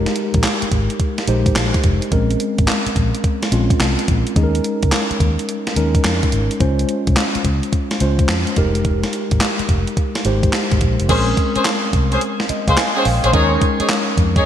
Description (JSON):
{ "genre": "R&B, new jack swing", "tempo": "107 BPM", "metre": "4/4", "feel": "swing 66% on 16ths", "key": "unclear", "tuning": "A4 = 440 Hz", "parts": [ { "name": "mellow tine electric piano", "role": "accompaniment", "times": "0.0-14.5 s", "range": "Ab3 to Ab5", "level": "-21 LUFS", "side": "equal", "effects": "medium stereo tremolo" }, { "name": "vintage muted fingered electric bass", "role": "bass", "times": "0.0-14.4 s", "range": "F1 to F2", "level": "-19 LUFS", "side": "equal", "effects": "none" }, { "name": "gated 80s digital drum machine", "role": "drums", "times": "0.1-14.4 s", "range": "crash cymbal, handclaps, hi-hat, kick drum, snare drum", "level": "-18 LUFS", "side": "equal", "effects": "gated reverb, gated reverb snare" }, { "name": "warm horn section", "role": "stabs", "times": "11.1-14.5 s", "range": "Db4 to Db5", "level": "-19 LUFS", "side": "left 2 dB", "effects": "ping-pong delay" } ], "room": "moderate lush hall reverb, RT60 2.6 s", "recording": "bright 1980s-style digital production", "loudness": "-15 LUFS", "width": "side -10 dB against mid", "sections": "0.0-11.1 A section; 11.1-14.5 B section", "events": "none", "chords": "0.0 Fm11 (rootless); 2.1 Bbm9; 4.4 Eb7sus4; 6.6 Dbmaj7; 8.6 Fm11; 11.1 Bbm9; 13.3 Eb7sus4", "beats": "0.44 1.00 1.56 | 2.12 2.68 3.24 3.80 | 4.36 4.92 5.48 6.04 | 6.60 7.17 7.73 8.29 | 8.85 9.41 9.97 10.53 | 11.09 11.65 12.21 12.77 | 13.33 13.89 14.46" }